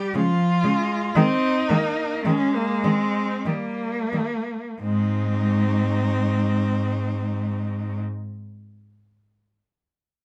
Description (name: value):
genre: classical, lyrical piece for cello ensemble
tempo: 42-64 BPM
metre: 3/4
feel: rubato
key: Ab major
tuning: A4 = 440 Hz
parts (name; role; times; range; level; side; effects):
- warm cello; melody; 0.0-8.0 s; Ab3 to G4; -29 LUFS; equal; none
- rich cello; second line; 0.0-8.0 s; F3 to Eb4; -28 LUFS; equal; none
- rich cello; accompaniment; 0.1-8.0 s; G3 to C4; -31 LUFS; equal; none
- rich cello; bass; 0.1-8.0 s; Ab2 to Eb3; -26 LUFS; equal; none
room: light reverb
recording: close, detailed microphones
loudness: -23 LUFS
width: mono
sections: 0.0-4.8 A section; 4.8-8.8 B section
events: slowing down 0.0-4.8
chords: 0.2 Db; 1.2 Ebsus4; 3.5 Eb; 4.8 Ab